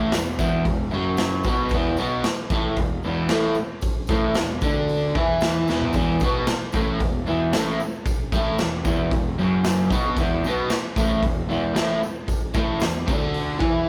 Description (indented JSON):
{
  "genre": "garage rock duo or trio",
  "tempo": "114 BPM",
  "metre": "4/4",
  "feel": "straight",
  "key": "unclear",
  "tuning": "A4 = 441 Hz",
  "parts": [
    { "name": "crunchy overdriven guitar", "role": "riff", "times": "0.0-13.9 s", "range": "E2 to E4", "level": "-25 LUFS", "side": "equal", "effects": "none" },
    { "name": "fuzz picked electric bass", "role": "bass", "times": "0.0-13.8 s", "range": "E1 to E2", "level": "-32 LUFS", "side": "equal", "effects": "overdrive" },
    { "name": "raw garage drum kit", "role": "drums", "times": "0.1-13.7 s", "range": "hi-hat, kick drum, snare drum, toms", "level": "-27 LUFS", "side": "equal", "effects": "none" },
    { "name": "tambourine", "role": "percussion", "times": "0.1-13.7 s", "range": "none", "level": "-47 LUFS", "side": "equal", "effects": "none" }
  ],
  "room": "light reverb",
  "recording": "rough rehearsal-room recording, warm saturation",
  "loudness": "-23 LUFS",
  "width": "mono",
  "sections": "0.0-13.9 A section",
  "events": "drum fill 5.7",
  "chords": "0.0 E5"
}